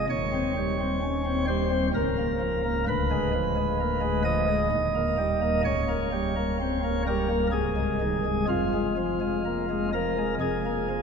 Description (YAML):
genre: classical, chorale-style piece for pipe organ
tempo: 64 BPM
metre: 3/4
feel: rubato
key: unclear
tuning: A4 = 440 Hz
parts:
  - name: pipe organ, sparkling flutes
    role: solo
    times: 0.0-11.0 s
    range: C1 to Eb5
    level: -24 LUFS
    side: equal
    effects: none
room: wet church reverb, RT60 3.0 s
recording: none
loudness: -24 LUFS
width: side -6 dB against mid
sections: 0.0-11.0 A section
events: none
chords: 0.1 Cm/Eb; 1.9 Bbm/Db; 2.9 Ddim7; 4.7 Eb; 5.7 Bbm69/Db; 7.5 Ab/C; 8.5 Fmadd11